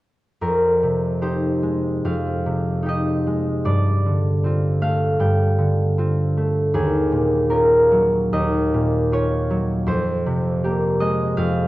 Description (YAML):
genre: classical, solo harp piece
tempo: 76 BPM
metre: 4/4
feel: uneven beats, rubato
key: F dorian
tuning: A4 = 439 Hz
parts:
  - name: concert harp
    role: solo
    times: 0.4-11.7 s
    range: Eb2 to G5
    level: -17 LUFS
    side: equal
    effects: none
room: moderate recital hall reverb, RT60 1.8 s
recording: worn, warbling old tape, cassette tape, warbly pitch drift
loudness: -18 LUFS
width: side -17 dB against mid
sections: 0.4-11.7 A section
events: none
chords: 0.4 Fm11; 3.7 Gm11; 6.8 Ebm11; 9.9 Fm11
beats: | 0.40 1.20 2.05 2.86 | 3.66 4.44 5.21 5.99 | 6.75 7.51 8.34 9.13 | 9.89 10.65 11.39